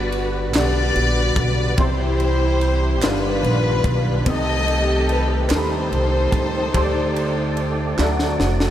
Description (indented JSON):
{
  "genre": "slow gospel",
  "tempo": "48 BPM (dotted quarters)",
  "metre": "6/8",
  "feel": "straight",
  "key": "G major",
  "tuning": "A4 = 440 Hz",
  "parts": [
    { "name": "warm studio string section", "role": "melody", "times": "0.0-8.4 s", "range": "D4 to Eb5", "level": "-22 LUFS", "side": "left 2 dB", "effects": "analog delay" },
    { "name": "warm upright piano", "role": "accompaniment", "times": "0.0-8.7 s", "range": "G2 to B5", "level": "-26 LUFS", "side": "left 2 dB", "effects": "analog chorus" },
    { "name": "percussive tonewheel organ", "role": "sustained chords", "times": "0.0-8.7 s", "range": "D3 to D5", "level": "-27 LUFS", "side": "right 4 dB", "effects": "slow rotary speaker, overdrive, chorus vibrato" },
    { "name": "upright bass", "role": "bass", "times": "0.0-8.7 s", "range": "F1 to Eb2", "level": "-22 LUFS", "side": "equal", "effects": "none" },
    { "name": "crisp fusion drum kit", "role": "drums", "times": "0.1-8.7 s", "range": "kick drum, ride cymbal, snare drum", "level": "-26 LUFS", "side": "equal", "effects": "none" },
    { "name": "group handclap", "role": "percussion", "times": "0.5-8.4 s", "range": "none", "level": "-34 LUFS", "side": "right 7 dB", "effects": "none" }
  ],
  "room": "moderate lush hall reverb, RT60 3.0 s",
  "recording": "dreamy mix soaked in reverb",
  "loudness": "-17 LUFS",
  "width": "side -11 dB against mid",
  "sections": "0.0-8.7 A section",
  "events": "drum fill 8.0-8.7",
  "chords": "0.0 Gmaj7; 1.8 C; 3.0 G7b13; 4.3 Cm6; 6.7 Dsus4; 8.0 D"
}